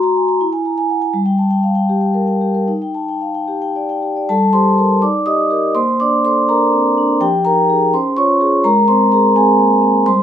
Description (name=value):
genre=classical, contemporary piece for solo vibraphone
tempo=74-85 BPM (dotted quarters)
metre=6/8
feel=rubato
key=G minor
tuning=A4 = 440 Hz
part: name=vibraphone with soft mallets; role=solo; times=0.0-10.2 s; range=F3 to Eb6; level=-12 LUFS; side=equal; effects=none
room=moderate stone room reverb, RT60 1.2 s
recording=minimal, uncompressed stereo recording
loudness=-12 LUFS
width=side -9 dB against mid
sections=0.0-4.3 A section; 4.3-10.2 B section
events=none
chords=0.4 Eadd9; 1.1 Gm7; 2.7 Ebmaj7; 4.3 Gmadd9; 5.0 Ebmaj7; 5.7 Bbmaj9; 7.2 Fm9; 7.9 C#maj7; 8.6 Abadd9